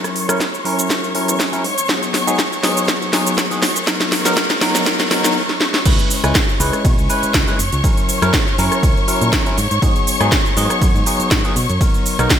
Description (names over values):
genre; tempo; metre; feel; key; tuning
filtered disco house; 121 BPM; 4/4; swing 54% on 16ths; C# dorian; A4 = 437 Hz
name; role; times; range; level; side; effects
bell-like tine electric piano; accompaniment; 0.0-12.3 s; F#3 to B4; -21 LUFS; left 1 dB; phaser, vintage 12-bit sampler grit, sidechain pumping, low-pass filter
warm studio string section; sustained chords; 0.0-12.4 s; C#5 to C#6; -23 LUFS; left 2 dB; sidechain pumping, low-pass filter
house drum kit; drums; 0.0-12.4 s; crash cymbal, hi-hat, ride cymbal, rim click, shaker, snare drum; -18 LUFS; equal; studio reverb, sidechain pumping on perc, sidechain pumping on hats, sidechain pumping on cymbals, gated reverb
fingered electric bass; bass; 0.3-12.3 s; F#1 to B2; -22 LUFS; equal; sidechain pumping, high-pass filter, low-pass filter
electronic kick drum; drums; 0.4-12.4 s; none; -18 LUFS; equal; high-pass filter on kick, studio reverb
room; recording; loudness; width
moderate lush hall reverb, RT60 1.8 s, digital ambience; bright 1980s-style digital production; -14 LUFS; side -9 dB against mid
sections
0.0-5.9 A section; 5.9-12.4 B section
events
build-up 0.0-5.9; drum fill 0.0-5.4, 5.5-5.9; drop 5.9-12.4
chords
0.0 F#7; 1.6 G#m7; 3.6 Bmaj7; 5.9 C#m7; 7.6 F#7; 9.6 G#m7; 11.6 Bmaj7